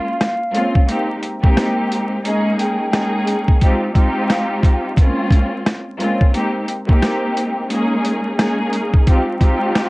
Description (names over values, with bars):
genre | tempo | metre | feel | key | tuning
hip hop, boom-bap hip-hop | 88 BPM | 4/4 | swing 62% on 16ths | Bb dorian | A4 = 441 Hz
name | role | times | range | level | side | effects
mellow hollow jazz flute | melody | 0.0-4.6 s | Eb5 to G5 | -24 LUFS | equal | high-pass filter, low-pass filter, cassette tape, analog delay
warm studio string section | accompaniment | 0.0-9.9 s | Ab3 to Ab4 | -18 LUFS | equal | high-pass filter, low-pass filter, cassette tape
boom bap sampler-style drum kit | drums | 0.2-9.9 s | hi-hat, kick drum, rim click, snare drum | -14 LUFS | equal | cassette tape
room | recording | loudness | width
little or no reverb | home recording on cassette, vinyl crackle, nothing above 10.7 kHz | -15 LUFS | side -22 dB against mid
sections
0.0-9.9 A section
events
none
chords
0.0 Bbm9; 0.9 Abmaj9; 2.2 Eb7sus4; 3.6 Fm9; 5.0 Bbm9; 6.3 Abmaj9; 7.7 Eb7sus4; 9.1 Fm9